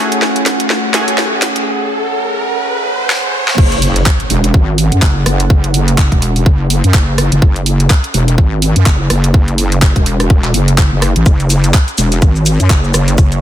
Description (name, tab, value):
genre	bass house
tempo	125 BPM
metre	4/4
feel	swing 58% on 16ths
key	F# minor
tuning	A4 = 440 Hz
part	sweeping resonant pad	sustained chords	0.0-13.4 s	A3 to F#5	-23 LUFS	right 1 dB	chorus, sidechain pumping
part	band-passed chord stab	stabs	0.0-1.6 s	A3 to G#4	-19 LUFS	right 2 dB	chorus, sidechain pumping, dub echo
part	riser and impact	sound effects	0.0-5.5 s	none	-19 LUFS	right 1 dB	none
part	garage drum kit	drums	0.1-13.4 s	crash cymbal, handclaps, hi-hat, rim click, shaker, snare drum	-16 LUFS	equal	overdrive, high-pass filter on snare, high-pass filter on hats, high-pass filter on cymbals, high-pass filter on perc
part	wobble bass	bass	3.6-13.4 s	E1 to F#2	-12 LUFS	equal	chorus, tube saturation, sidechain pumping
part	electronic kick drum	drums	3.6-13.3 s	none	-9 LUFS	equal	overdrive
room	little or no reverb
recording	dense, heavily limited modern master, high-pass filter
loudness	-10 LUFS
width	side -11 dB against mid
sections	0.0-3.6 A section; 3.6-13.4 B section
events	build-up 0.0-3.6; drum fill 0.0-1.7, 3.1-3.6; riser 0.0-3.6; filter sweep on analog synth pad 0.0-3.6; break 1.7-3.6; drop 3.6-13.4; impact 3.6-5.5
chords	0.0 F#madd9